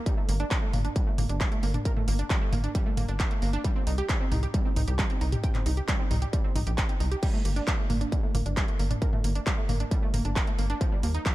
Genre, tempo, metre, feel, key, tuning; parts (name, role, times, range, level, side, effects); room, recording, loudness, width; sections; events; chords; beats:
uplifting trance; 134 BPM; 4/4; straight; G minor; A4 = 440 Hz
wide unison pluck; arpeggios; 0.1-11.3 s; F3 to G5; -34 LUFS; right 2 dB; cassette tape, sidechain pumping, ping-pong delay
electronic kick drum; drums; 0.1-11.3 s; -27 LUFS; equal; distortion, overdrive
techno drum kit; drums; 0.1-11.3 s; crash cymbal, handclaps, hi-hat, toms; -33 LUFS; equal; overdrive
tight sequencer bass; bass; 0.3-11.2 s; G1 to Eb2; -28 LUFS; equal; tube saturation, sidechain pumping
little or no reverb; dark, warm production; -24 LUFS; side -17 dB against mid
0.0-11.3 A section
0.1 Gm; 3.6 C5; 7.2 Gm; 10.8 N.C.
| 0.06 0.51 0.96 1.41 | 1.85 2.30 2.75 3.20 | 3.65 4.09 4.54 4.99 | 5.44 5.88 6.33 6.78 | 7.23 7.67 8.12 8.57 | 9.02 9.47 9.91 10.36 | 10.81 11.26